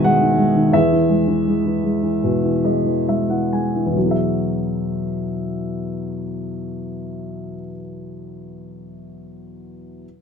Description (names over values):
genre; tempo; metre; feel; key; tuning
classical, lyrical solo piano; 64-90 BPM; 4/4; rubato; E major; A4 = 439 Hz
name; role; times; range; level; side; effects
dark baby grand piano; solo; 0.0-10.1 s; E2 to G#5; -19 LUFS; equal; none
room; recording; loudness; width
light reverb; minimal, uncompressed stereo recording; -17 LUFS; side -7 dB against mid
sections
0.0-4.0 A section; 4.0-7.5 B section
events
slowing down 0.0-4.0; grand piano fill 2.2-4.0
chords
0.0 Emaj7; 4.0 Eadd9